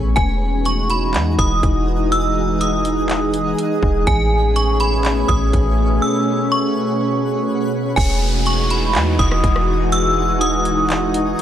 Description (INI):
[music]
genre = hip hop, atmospheric cloud-rap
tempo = 123 BPM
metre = 4/4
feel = half-time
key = E major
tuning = A4 = 440 Hz
[part]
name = warbly tape-like pad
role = sustained chords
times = 0.0-11.4 s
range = B2 to G#4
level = -20 LUFS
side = equal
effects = chorus, built-in reverb, sidechain pumping
[part]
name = soft 808-style bass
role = bass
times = 0.0-11.3 s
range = E1 to E2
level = -20 LUFS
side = equal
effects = none
[part]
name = twinkling granular texture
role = texture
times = 0.0-11.4 s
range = C#4 to G#5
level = -31 LUFS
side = right 1 dB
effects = built-in reverb
[part]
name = metallic FM bell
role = melody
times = 0.2-11.4 s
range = G#5 to E6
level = -21 LUFS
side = equal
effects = chorus, phaser, tape echo
[part]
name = trap drum kit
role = drums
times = 0.2-11.4 s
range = handclaps, hi-hat, kick drum, rim click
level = -21 LUFS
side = equal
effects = none
[part]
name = downlifter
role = sound effects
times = 8.0-11.4 s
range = none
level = -28 LUFS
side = equal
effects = none
[sound]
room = little or no reverb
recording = dry, gritty hardware recording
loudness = -15 LUFS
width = side -10 dB against mid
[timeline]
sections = 0.0-8.0 A section; 8.0-11.4 B section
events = break 6.0-8.0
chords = 0.2 Emaj9; 4.1 Amaj9; 8.0 Emaj9